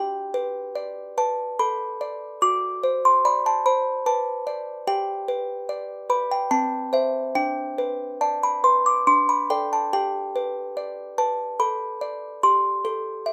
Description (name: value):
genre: classical, lullaby for music box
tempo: 72 BPM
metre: 3/4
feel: rubato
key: G major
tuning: A4 = 440 Hz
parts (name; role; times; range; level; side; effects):
- music box; solo; 0.0-13.3 s; C4 to D6; -24 LUFS; equal; none
room: moderate studio reverb, RT60 0.5 s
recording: rough home demo mix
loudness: -24 LUFS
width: mono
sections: 0.0-13.3 A section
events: none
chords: 0.0 G; 2.4 D7/F#; 4.9 G; 6.5 Am/C; 7.4 G/D; 9.9 G; 12.4 Am7/G